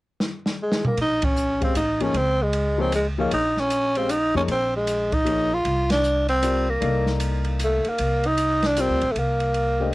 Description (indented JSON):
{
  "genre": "modal jazz",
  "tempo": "154 BPM",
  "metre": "3/4",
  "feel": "swing 64% on 8ths",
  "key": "Bb dorian",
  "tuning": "A4 = 440 Hz",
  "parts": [
    { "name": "open jazz drum kit", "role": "drums", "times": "0.2-9.7 s", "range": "hi-hat, kick drum, ride cymbal, snare drum, toms", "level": "-29 LUFS", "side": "equal", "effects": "cassette tape" },
    { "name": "growling tenor saxophone", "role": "melody", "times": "0.6-9.9 s", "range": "Ab3 to F4", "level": "-22 LUFS", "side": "equal", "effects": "cassette tape" },
    { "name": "upright bass", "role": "bass", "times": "1.0-9.9 s", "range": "A1 to F2", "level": "-26 LUFS", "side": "equal", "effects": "none" },
    { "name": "clear concert grand piano", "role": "accompaniment", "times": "1.6-9.9 s", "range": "F3 to F5", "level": "-28 LUFS", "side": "left 5 dB", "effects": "cassette tape" }
  ],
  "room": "light reverb",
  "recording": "home recording on cassette",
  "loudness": "-20 LUFS",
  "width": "side -19 dB against mid",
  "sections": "1.0-9.9 A section",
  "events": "drum fill 0.2-1.0; band accent 1.2, 5.8",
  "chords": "0.0 N.C.; 1.0 Bbm11; 5.7 Cm11"
}